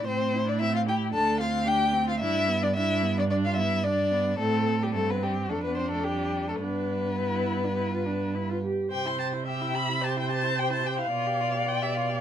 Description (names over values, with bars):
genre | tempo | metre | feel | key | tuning
quick classical-period movement for string quartet | 109 BPM | 4/4 | rubato | C major | A4 = 439 Hz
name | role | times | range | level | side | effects
warm violin | melody | 0.0-12.2 s | G3 to C6 | -32 LUFS | left 5 dB | none
warm violin | second line | 0.0-12.2 s | E4 to A5 | -29 LUFS | left 2 dB | none
rich viola | accompaniment | 0.0-12.2 s | B3 to E5 | -32 LUFS | right 2 dB | none
warm cello | bass | 0.0-12.2 s | D2 to C3 | -29 LUFS | right 4 dB | none
room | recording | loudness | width
light reverb | close, detailed microphones | -24 LUFS | side -10 dB against mid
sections
0.0-8.9 A section; 8.9-12.2 B section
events
none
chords
0.1 Am; 1.1 Dmadd11; 2.2 G; 4.4 Am; 5.5 Dm/F; 6.6 G; 8.9 C; 11.1 G7/B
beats
| 0.07 0.60 1.14 1.68 | 2.22 2.77 3.31 3.86 | 4.40 4.95 5.50 6.06 | 6.63 7.21 7.79 8.36 | 8.92 9.47 10.02 10.57 | 11.12 11.67